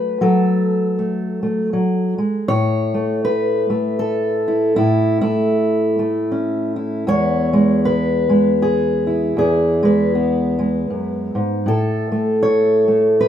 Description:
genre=folk, solo fingerstyle acoustic guitar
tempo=79 BPM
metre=3/4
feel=swing 59% on 8ths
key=unclear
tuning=A4 = 439 Hz
part: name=fingerpicked steel-string acoustic guitar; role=solo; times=0.0-13.3 s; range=E2 to C#5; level=-15 LUFS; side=equal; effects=none
room=moderate large studio reverb, RT60 0.9 s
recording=band playing live in one room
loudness=-15 LUFS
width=side -10 dB against mid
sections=0.0-2.5 A section; 2.5-13.3 B section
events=none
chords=0.0 F#m; 2.5 A; 7.1 E; 11.7 A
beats=| 0.20 0.96 1.73 | 2.49 3.26 4.02 | 4.78 5.55 6.31 | 7.08 7.84 8.60 | 9.37 10.13 10.89 | 11.66 12.42 13.18

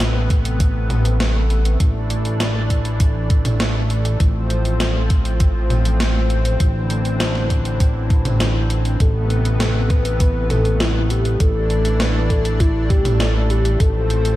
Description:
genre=synthwave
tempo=100 BPM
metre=4/4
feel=straight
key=A minor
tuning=A4 = 440 Hz
part: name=lush unison pad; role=sustained chords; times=0.0-14.4 s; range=C3 to D4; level=-25 LUFS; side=equal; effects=chorus, sidechain pumping
part: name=fat analog bass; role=bass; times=0.0-14.4 s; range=A1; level=-19 LUFS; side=equal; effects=sidechain pumping
part: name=gated 80s digital drum machine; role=drums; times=0.0-14.4 s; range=hi-hat, snare drum, toms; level=-24 LUFS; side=equal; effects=gated reverb, gated reverb snare
part: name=electronic kick drum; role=drums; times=0.3-13.9 s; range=none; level=-15 LUFS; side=equal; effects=none
part: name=soft octave-layered synth lead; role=melody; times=9.0-14.4 s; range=E4 to B4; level=-23 LUFS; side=left 2 dB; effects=chorus, tremolo, tape echo
room=digital ambience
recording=dark, warm production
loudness=-16 LUFS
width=side -15 dB against mid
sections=0.0-14.4 A section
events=none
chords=0.0 Amadd9; 1.8 Dsus2/A; 4.2 F/A; 6.6 Cadd9/A; 9.0 Amadd9; 11.4 Dsus2/A; 13.8 F/A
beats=0.00 0.60 1.20 | 1.80 2.40 3.00 3.60 | 4.20 4.80 5.40 6.00 | 6.60 7.20 7.80 8.40 | 9.00 9.60 10.20 10.80 | 11.40 12.00 12.60 13.20 | 13.80

